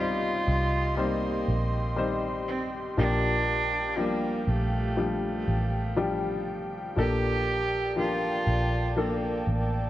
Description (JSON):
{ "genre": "pop ballad", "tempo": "60 BPM", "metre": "4/4", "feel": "straight", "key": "unclear", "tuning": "A4 = 440 Hz", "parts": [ { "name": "rich cello", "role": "melody", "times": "0.0-9.9 s", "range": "A3 to G4", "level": "-30 LUFS", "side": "right 2 dB", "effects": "none" }, { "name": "warm upright piano", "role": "accompaniment", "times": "0.0-9.9 s", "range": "Bb2 to C5", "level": "-30 LUFS", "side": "left 3 dB", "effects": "none" }, { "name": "airy breathy pad", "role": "sustained chords", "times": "0.0-9.9 s", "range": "G4 to C6", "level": "-36 LUFS", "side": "right 1 dB", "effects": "chorus" }, { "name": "vintage muted fingered electric bass", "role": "bass", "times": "0.0-9.9 s", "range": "A1 to C2", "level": "-29 LUFS", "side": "equal", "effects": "none" } ], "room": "moderate lush hall reverb, RT60 2.1 s", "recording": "worn, warbling old tape, cassette tape, warbly pitch drift", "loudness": "-25 LUFS", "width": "side -14 dB against mid", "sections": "0.0-9.9 A section", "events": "none", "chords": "0.0 Cm; 3.0 Gm7/Bb", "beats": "0.98 1.98 | 2.98 3.98 4.98 5.98 | 6.98 7.98 8.98" }